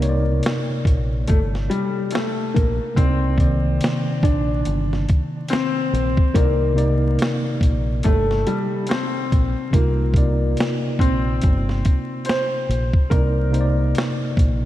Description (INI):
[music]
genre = lo-fi hip hop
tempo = 71 BPM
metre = 4/4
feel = swing 58% on 16ths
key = C dorian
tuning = A4 = 442 Hz
[part]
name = warm upright piano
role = melody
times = 0.0-14.7 s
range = G3 to C5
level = -24 LUFS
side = left 2 dB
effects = wide subtle chorus, low-pass filter, ping-pong delay
[part]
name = tine electric piano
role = accompaniment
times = 0.0-14.7 s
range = C3 to D5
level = -24 LUFS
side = equal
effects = overdrive, fast stereo tremolo, cassette tape, low-pass filter
[part]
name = deep dub fingered electric bass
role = bass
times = 0.0-14.7 s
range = G1 to C2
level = -22 LUFS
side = equal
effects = none
[part]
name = boom bap sampler-style drum kit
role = drums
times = 0.0-14.6 s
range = hi-hat, kick drum, snare drum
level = -20 LUFS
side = equal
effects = none
[sound]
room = light reverb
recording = vinyl crackle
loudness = -17 LUFS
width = side -14 dB against mid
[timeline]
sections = 0.0-13.1 A section; 13.1-14.7 A section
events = none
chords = 0.0 Cm9